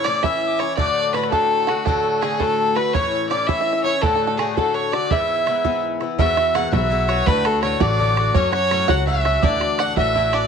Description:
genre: celtic folk, Celtic jig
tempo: 111 BPM (dotted quarters)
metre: 6/8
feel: straight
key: unclear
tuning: A4 = 439 Hz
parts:
  - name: clear fiddle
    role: melody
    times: 0.0-10.5 s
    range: F#4 to F#5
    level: -20 LUFS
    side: right 2 dB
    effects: none
  - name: bluegrass banjo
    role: second line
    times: 0.0-10.5 s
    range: F#4 to F#5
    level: -28 LUFS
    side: right 11 dB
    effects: none
  - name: tin whistle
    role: second line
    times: 0.0-10.5 s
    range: F#5 to F#6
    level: -29 LUFS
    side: left 12 dB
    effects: none
  - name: Irish bouzouki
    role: accompaniment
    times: 0.0-10.5 s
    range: G#2 to F#4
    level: -24 LUFS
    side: left 11 dB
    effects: none
  - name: bodhran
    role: percussion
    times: 0.1-10.4 s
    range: none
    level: -23 LUFS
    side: right 5 dB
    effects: none
  - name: upright bass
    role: bass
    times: 6.2-10.4 s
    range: A1 to F#2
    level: -23 LUFS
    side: equal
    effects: none
room: light reverb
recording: 1960s-style stereo with parts hard left and right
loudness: -17 LUFS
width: side -6 dB against mid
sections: 0.0-6.2 A section; 6.2-10.5 B section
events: none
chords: 0.0 A; 0.8 D; 2.9 A; 4.0 D; 5.1 E; 6.2 Eadd9; 7.3 D; 8.3 F#m; 9.4 Dadd9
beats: 0.24 | 0.78 1.32 | 1.86 2.40 | 2.94 3.49 | 4.03 4.57 | 5.11 5.65 | 6.19 6.73 | 7.27 7.81 | 8.35 8.89 | 9.43 9.97

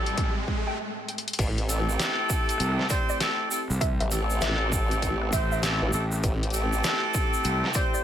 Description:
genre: glitch hop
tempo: 99 BPM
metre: 4/4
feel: swing 64% on 16ths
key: A minor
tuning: A4 = 435 Hz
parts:
  - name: warm analog pad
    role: sustained chords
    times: 0.0-8.0 s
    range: A2 to G4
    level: -37 LUFS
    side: left 2 dB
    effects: chorus, vintage 12-bit sampler grit, sidechain pumping
  - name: clear horn section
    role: stabs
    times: 0.0-8.0 s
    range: C4 to C5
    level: -29 LUFS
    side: equal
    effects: vintage 12-bit sampler grit, sidechain pumping, digital delay
  - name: riser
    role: sound effects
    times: 0.0-0.8 s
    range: none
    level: -34 LUFS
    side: right 2 dB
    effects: none
  - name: dubstep drum kit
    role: drums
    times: 0.1-7.9 s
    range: crash cymbal, hi-hat, rim click, snare drum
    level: -31 LUFS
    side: equal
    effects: none
  - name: electronic kick drum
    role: drums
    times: 0.2-7.9 s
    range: none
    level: -28 LUFS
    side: equal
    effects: none
  - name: woody wave-folded pluck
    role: melody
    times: 0.7-8.0 s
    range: D5 to G5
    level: -36 LUFS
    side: right 1 dB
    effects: wide subtle chorus, digital delay
  - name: formant-sweep wobble bass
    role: bass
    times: 1.4-6.8 s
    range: A1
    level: -27 LUFS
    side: equal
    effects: chorus, tube saturation
  - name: egg shaker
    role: percussion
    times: 1.4-8.0 s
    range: none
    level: -36 LUFS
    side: right 3 dB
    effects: none
  - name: fuzz fingered electric bass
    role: bass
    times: 2.6-7.6 s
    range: A1 to C2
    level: -28 LUFS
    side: equal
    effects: overdrive, tube saturation
room: little or no reverb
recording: none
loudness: -24 LUFS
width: side -10 dB against mid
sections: 0.0-1.4 A section; 1.4-8.0 B section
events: build-up 0.0-1.4; riser 0.0-0.8; stop 0.8-1.4; drum fill 1.1-1.4; drop 1.4-8.0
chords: 0.0 Am7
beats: 0.18 0.78 | 1.39 1.99 2.60 3.21 | 3.81 4.42 5.02 5.63 | 6.24 6.84 7.45

